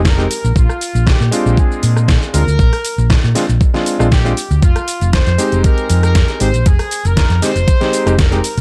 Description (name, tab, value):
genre	nu-disco, nu disco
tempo	118 BPM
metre	4/4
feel	straight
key	F dorian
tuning	A4 = 438 Hz
part	hollow-body short-scale fingered electric bass	bass	0.0-8.6 s	F1 to Bb2	-16 LUFS	equal	none
part	electronic kick drum	drums	0.0-8.3 s	none	-15 LUFS	equal	overdrive
part	warm trumpet section	melody	0.1-8.6 s	F4 to C5	-24 LUFS	equal	vintage 12-bit sampler grit
part	pop drum kit	drums	0.1-8.6 s	hi-hat, rim click, shaker, snare drum	-24 LUFS	equal	overdrive
part	warm electric grand piano	accompaniment	0.2-8.4 s	Ab3 to G4	-21 LUFS	equal	none
room	little or no reverb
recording	dry, gritty hardware recording, cassette tape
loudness	-14 LUFS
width	mono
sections	0.0-8.6 A section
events	none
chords	0.3 Bb9; 4.6 Fm9